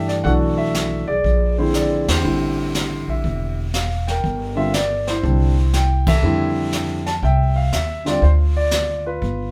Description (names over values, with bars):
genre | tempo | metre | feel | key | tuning
jazz piano trio | 120 BPM | 4/4 | swing 68% on 8ths | unclear | A4 = 440 Hz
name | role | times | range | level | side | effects
dark concert grand piano | melody | 0.0-9.5 s | D3 to A5 | -23 LUFS | equal | none
upright bass | bass | 0.0-9.5 s | E1 to G2 | -22 LUFS | equal | none
jazz brush drum kit | drums | 0.1-9.5 s | brushed snare drum, crash cymbal, hi-hat, kick drum, ride cymbal, snare drum | -28 LUFS | equal | none
room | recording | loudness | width
moderate studio reverb, RT60 0.7 s | band playing live in one room | -19 LUFS | mono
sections
0.0-9.5 A section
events
band accent 2.0, 6.0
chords
0.2 Bm7; 1.2 Bb9; 2.2 Am7; 4.2 Gm; 5.2 Cadd9; 6.2 Fmaj9; 8.2 Dm